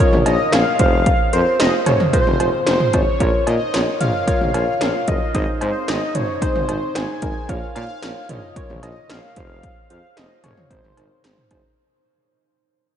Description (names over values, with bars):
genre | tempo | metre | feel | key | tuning
synth-pop | 112 BPM | 4/4 | straight | Bb minor | A4 = 440 Hz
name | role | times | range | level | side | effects
wide unison lead | melody | 0.0-11.5 s | C5 to Ab5 | -22 LUFS | left 1 dB | tape echo
warbly dusty pluck | accompaniment | 0.0-11.7 s | Eb4 to Eb5 | -23 LUFS | right 1 dB | chorus
clear tuba | bass | 0.1-11.6 s | F1 to Bb2 | -23 LUFS | equal | none
80s electronic pad drums | drums | 0.1-11.6 s | cowbell, hi-hat, kick drum, snare drum, toms | -20 LUFS | equal | gated reverb on snare and toms
room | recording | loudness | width
wet cathedral reverb, RT60 5.7 s | dreamy mix soaked in reverb, nothing above 10.7 kHz | -16 LUFS | side -9 dB against mid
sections
0.0-11.8 A section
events
fade-out 0.0-11.8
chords
0.0 Bbm; 0.8 Fm; 3.2 Bbm; 5.3 Ab; 7.5 Bbm; 9.4 Fm; 10.7 Ab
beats
0.53 | 1.06 1.60 2.13 2.67 | 3.21 3.74 4.28 4.81 | 5.35 5.88 6.42 6.96 | 7.49 8.03 8.56 9.10 | 9.63 10.17 10.71 11.24